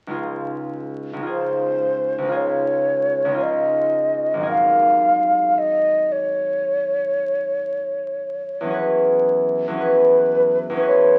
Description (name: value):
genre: classical, impressionist duo for flute and harp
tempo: 56 BPM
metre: 4/4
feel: rubato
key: Db major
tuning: A4 = 440 Hz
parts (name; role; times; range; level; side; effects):
- concert harp; accompaniment; 0.1-11.2 s; Ab1 to B4; -23 LUFS; equal; none
- mellow hollow concert flute; melody; 1.3-11.2 s; B4 to F5; -21 LUFS; equal; none
room: moderate large studio reverb, RT60 1.1 s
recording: very old 78 rpm record, vinyl crackle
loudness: -20 LUFS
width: mono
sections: 0.2-11.2 A section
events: none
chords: 0.2 Dbmaj9; 4.5 Ab11; 8.8 E69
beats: | 0.17 1.29 2.36 3.42 | 4.51 5.59 6.65 7.70 | 8.78 9.84 10.86